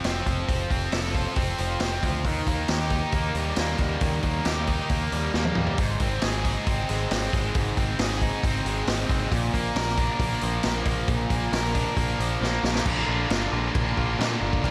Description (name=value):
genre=classic rock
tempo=136 BPM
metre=4/4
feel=straight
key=unclear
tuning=A4 = 440 Hz
part: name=distorted electric guitar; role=riff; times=0.0-14.7 s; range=Ab2 to Bb4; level=-29 LUFS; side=equal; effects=overdrive, slapback echo
part: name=picked electric bass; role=bass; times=0.0-14.7 s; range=F1 to Bb2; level=-31 LUFS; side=equal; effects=none
part: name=vintage drum kit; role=drums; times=0.0-14.7 s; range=crash cymbal, hi-hat, kick drum, snare drum, toms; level=-30 LUFS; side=equal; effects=none
room=moderate lush hall reverb, RT60 2.0 s, studio reverb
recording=big arena sound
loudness=-25 LUFS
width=mono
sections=0.0-12.9 A section; 12.9-14.7 B section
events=drum fill 5.4-5.8, 12.4-12.9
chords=0.0 F; 2.3 Eb; 5.8 Ab; 9.3 Bb